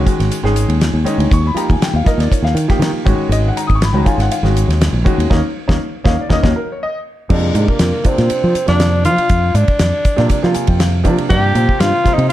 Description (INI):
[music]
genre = electric jazz fusion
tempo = 120 BPM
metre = 4/4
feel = swing 53% on 16ths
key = F dorian from 7.3 s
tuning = A4 = 441 Hz
[part]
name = clear grand piano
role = accompaniment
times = 0.0-12.3 s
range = C3 to D#6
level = -19 LUFS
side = equal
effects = none
[part]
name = fretless electric bass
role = bass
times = 0.0-12.3 s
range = G#1 to F3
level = -15 LUFS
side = equal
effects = none
[part]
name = damped 70s drum kit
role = drums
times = 0.1-12.3 s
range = crash cymbal, hi-hat, kick drum, ride cymbal, snare drum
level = -17 LUFS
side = equal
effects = none
[part]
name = mellow tenor saxophone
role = melody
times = 7.3-12.3 s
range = Ab3 to G4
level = -17 LUFS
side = equal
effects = none
[sound]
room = light reverb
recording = dark, warm production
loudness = -12 LUFS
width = side -14 dB against mid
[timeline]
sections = 0.0-7.3 A section; 7.3-12.3 B section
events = band accent 5.3-7.3; drum fill 7.1; grand piano fill 10.3-11.3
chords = 0.0 G#7sus4; 1.3 D#add9; 3.1 G#9sus4; 5.1 D#7(no3); 7.3 F5; 11.3 Gm7